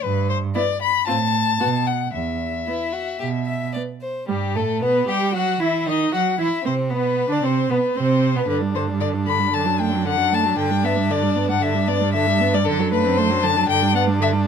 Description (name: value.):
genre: quick classical-period movement for string quartet.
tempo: 115 BPM.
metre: 4/4.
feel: straight.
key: unclear.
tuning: A4 = 442 Hz.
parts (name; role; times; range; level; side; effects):
rich violin; melody; 0.0-14.3 s; G4 to B5; -22 LUFS; left 9 dB; none.
rich cello; bass; 0.0-14.5 s; E2 to G3; -24 LUFS; right 6 dB; none.
clear violin; second line; 0.5-14.5 s; G3 to E5; -26 LUFS; left 1 dB; none.
clear viola; accompaniment; 0.6-14.5 s; D3 to G4; -24 LUFS; right 6 dB; none.
room: light reverb.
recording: close, detailed microphones.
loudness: -18 LUFS.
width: side -7 dB against mid.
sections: 0.0-4.3 A section; 4.3-14.5 B section.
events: none.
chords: 0.0 Em/G (rootless); 1.1 F/A (rootless); 1.6 B5; 2.1 E5; 4.3 Gadd9; 5.3 D#m; 6.4 E5; 8.5 G5; 9.5 D/F#; 10.6 G; 12.7 D7/F#; 13.7 G.